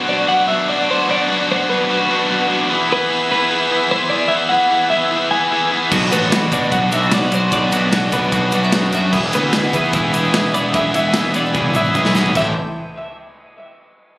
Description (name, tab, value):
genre	indie rock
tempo	149 BPM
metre	4/4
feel	straight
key	unclear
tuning	A4 = 440 Hz
part	twelve-string electric guitar	melody	0.0-12.6 s	B4 to G#5	-20 LUFS	equal	analog delay
part	lush unison pad	sustained chords	0.0-12.6 s	E4 to E6	-28 LUFS	right 1 dB	chorus
part	biting overdriven guitar	riff	0.0-12.5 s	A2 to A4	-17 LUFS	left 1 dB	none
part	twangy electric guitar	riff	5.9-12.5 s	E3 to G#4	-22 LUFS	right 2 dB	wide subtle chorus
part	fuzz picked electric bass	bass	5.9-12.5 s	E1 to B2	-19 LUFS	equal	overdrive
part	big rock drum kit	drums	5.9-12.4 s	crash cymbal, kick drum, ride cymbal, snare drum, toms	-21 LUFS	equal	none
part	egg shaker	percussion	5.9-12.5 s	none	-37 LUFS	equal	none
part	delicate synth tine bell	second line	8.5-9.2, 12.4-12.5 s	D5 to F#5	-30 LUFS	equal	none
room	light reverb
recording	recorded on a phone in the room, club reverb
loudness	-13 LUFS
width	side -20 dB against mid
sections	0.0-12.4 A section; 12.4-14.0 B section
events	drum fill 11.5-12.4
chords	0.0 Bm; 2.7 E; 5.9 Bm; 9.1 E; 12.4 Am7